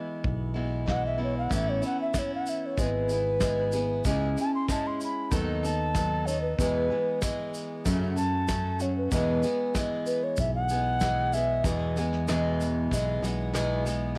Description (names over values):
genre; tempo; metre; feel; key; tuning
acoustic folk duo or small band; 95 BPM; 4/4; straight; unclear; A4 = 438 Hz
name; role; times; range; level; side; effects
picked steel-string acoustic guitar; accompaniment; 0.0-14.2 s; E2 to A4; -32 LUFS; equal; none
soft brush drum kit; drums; 0.2-13.9 s; kick drum, snare drum; -34 LUFS; equal; cassette tape
fingered electric bass; bass; 0.3-14.2 s; G#1 to F#2; -33 LUFS; equal; none
bright alto ocarina; melody; 0.9-11.6 s; B4 to C6; -32 LUFS; equal; cassette tape
tube shaker; percussion; 1.5-14.0 s; none; -45 LUFS; equal; none
room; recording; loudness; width
little or no reverb; home recording on cassette; -28 LUFS; mono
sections
0.0-11.7 A section; 11.7-14.2 B section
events
ocarina solo 0.0-11.7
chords
0.0 E; 1.5 Aadd9; 2.8 E/G#; 4.1 C#m; 5.3 B7/D#; 6.6 E; 7.9 F#m; 9.1 E